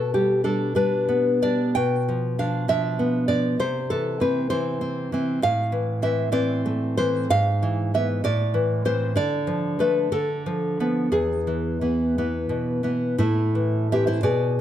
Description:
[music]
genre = romantic piece for solo classical guitar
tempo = 56-68 BPM (dotted quarters)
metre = 6/8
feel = rubato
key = C major, A minor from 5.4 s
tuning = A4 = 440 Hz
[part]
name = nylon-string guitar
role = solo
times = 0.0-14.6 s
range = E2 to G5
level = -21 LUFS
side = equal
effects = none
[sound]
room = moderate recital hall reverb, RT60 1.4 s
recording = none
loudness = -21 LUFS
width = side -11 dB against mid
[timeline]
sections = 0.0-13.2 A section; 13.2-14.6 B section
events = none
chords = 0.0 G/B; 1.8 G7/B; 3.6 C; 5.4 Am; 7.3 E/G#; 8.2 Am; 9.2 Dm; 11.1 E; 13.2 Am

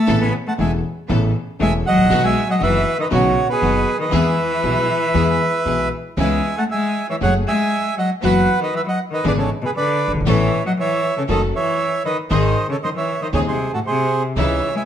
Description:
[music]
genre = tango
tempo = 118 BPM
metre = 4/4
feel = rubato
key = E major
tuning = A4 = 440 Hz
[part]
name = bandoneon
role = melody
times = 0.0-14.8 s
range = F#4 to B5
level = -20 LUFS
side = right 3 dB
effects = none
[part]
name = clear cello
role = second line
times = 0.0-14.8 s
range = A2 to B3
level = -22 LUFS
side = left 3 dB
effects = none
[part]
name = warm grand piano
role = accompaniment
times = 0.1-14.6 s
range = D#1 to A4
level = -22 LUFS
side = left 5 dB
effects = none
[part]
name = clear studio string section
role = stabs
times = 0.1-14.6 s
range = A3 to B4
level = -29 LUFS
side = right 3 dB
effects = none
[part]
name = upright bass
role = bass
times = 0.1-14.6 s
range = E1 to E2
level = -22 LUFS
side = right 2 dB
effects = none
[sound]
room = moderate large studio reverb, RT60 1.1 s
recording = dark, warm production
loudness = -16 LUFS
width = side -9 dB against mid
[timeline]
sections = 0.0-6.2 A section; 6.2-14.9 B section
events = none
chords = 0.1 Aadd9; 2.1 B; 4.1 E; 6.2 C#m7; 7.2 F#madd9; 8.2 Bsus4/F#; 9.3 E7/G#; 10.3 Aadd9; 11.3 F#m; 12.3 G#

